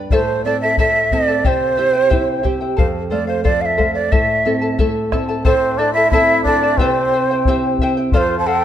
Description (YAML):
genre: andean folk, Andean ensemble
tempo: 90 BPM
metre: 2/4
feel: straight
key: A minor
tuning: A4 = 440 Hz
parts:
  - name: charango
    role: accompaniment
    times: 0.0-8.6 s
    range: E4 to B5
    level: -22 LUFS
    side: left 4 dB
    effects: none
  - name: nylon-string guitar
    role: accompaniment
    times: 0.0-8.6 s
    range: F2 to A4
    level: -22 LUFS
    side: right 3 dB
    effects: none
  - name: breathy bright large quena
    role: melody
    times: 0.1-8.6 s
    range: C5 to A5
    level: -17 LUFS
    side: right 3 dB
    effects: none
  - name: bombo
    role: percussion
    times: 0.1-8.3 s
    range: none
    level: -19 LUFS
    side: left 2 dB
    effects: none
  - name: trumpet with cup mute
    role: second line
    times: 5.4-8.6 s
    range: C4 to C5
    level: -20 LUFS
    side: left 5 dB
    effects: none
room: moderate scoring stage reverb, RT60 1.6 s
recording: minimal, uncompressed stereo recording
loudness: -14 LUFS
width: side -10 dB against mid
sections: 0.0-5.5 A section; 5.5-8.6 A section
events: none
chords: 0.1 Am; 1.4 C; 2.8 F; 4.1 Am; 6.8 C; 8.1 F